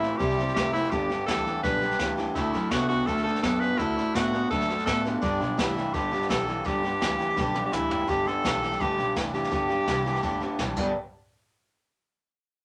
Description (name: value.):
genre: rockabilly.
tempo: 168 BPM.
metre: 4/4.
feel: straight.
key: G major.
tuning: A4 = 440 Hz.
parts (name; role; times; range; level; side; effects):
edgy tenor saxophone; melody; 0.0-10.6 s; D4 to B4; -31 LUFS; equal; none.
picked steel-string acoustic guitar; accompaniment; 0.0-10.9 s; G2 to A4; -34 LUFS; equal; none.
electric guitar through a small old amp; riff; 0.0-10.9 s; G2 to D4; -32 LUFS; equal; none.
upright bass; bass; 0.0-10.9 s; F1 to A2; -38 LUFS; equal; none.
jazz brush drum kit; drums; 0.0-10.9 s; crash cymbal, hi-hat, kick drum, snare drum, toms; -35 LUFS; equal; none.
room: wet studio ambience, RT60 0.5 s.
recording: none.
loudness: -26 LUFS.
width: mono.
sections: 0.0-8.1 A section; 8.1-10.9 B section; 10.9-12.4 C section.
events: drum fill 7.4-8.1.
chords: 0.0 C; 0.9 G; 2.4 D; 5.2 G; 10.9 N.C..